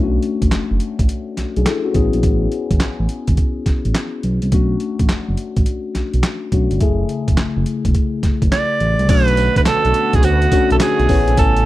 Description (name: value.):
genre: R&B, new jack swing.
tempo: 105 BPM.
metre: 4/4.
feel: swing 66% on 16ths.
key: B dorian.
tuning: A4 = 441 Hz.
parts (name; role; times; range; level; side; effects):
mellow tine electric piano; accompaniment; 0.0-11.7 s; C#3 to G#5; -21 LUFS; left 5 dB; phaser, low-pass filter.
smooth synth bass; bass; 0.0-11.7 s; E1 to D2; -18 LUFS; right 1 dB; none.
boom bap sampler-style drum kit; drums; 0.2-11.7 s; crash cymbal, handclaps, hi-hat, kick drum, snare drum, tambourine; -18 LUFS; right 1 dB; none.
raspy alto saxophone; melody; 8.5-11.7 s; F#4 to D5; -17 LUFS; right 4 dB; none.
sweeping resonant pad; sustained chords; 9.1-11.7 s; C#3 to F#4; -26 LUFS; right 4 dB; chorus.
cowbell; percussion; 9.1-11.6 s; none; -32 LUFS; right 15 dB; none.
room: digital ambience.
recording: dry, close 1970s-style studio recording.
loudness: -14 LUFS.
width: side -16 dB against mid.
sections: 0.0-9.1 A section; 9.1-11.7 B section.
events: none.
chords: 0.0 Bm7; 1.9 Amaj7; 4.5 Bm7; 6.8 F#m7; 9.1 Bm7; 11.1 Amaj7.